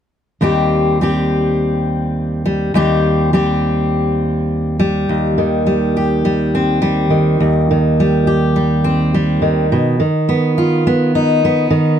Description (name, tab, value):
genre	folk, solo fingerstyle acoustic guitar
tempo	104 BPM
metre	4/4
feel	rubato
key	Eb major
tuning	A4 = 440 Hz
part	fingerpicked steel-string acoustic guitar	solo	0.4-12.0 s	Eb2 to G4	-13 LUFS	equal	none
room	light reverb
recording	close, detailed microphones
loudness	-13 LUFS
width	side -9 dB against mid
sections	0.4-5.1 A section; 5.1-12.0 B section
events	none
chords	0.4 Eb6; 9.7 B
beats	| 0.41 1.00 1.57 2.15 | 2.72 3.30 3.88 4.47 | 5.06 5.65 6.24 6.82 | 7.40 7.98 8.55 9.11 | 9.69 10.26 10.83 11.41 | 11.99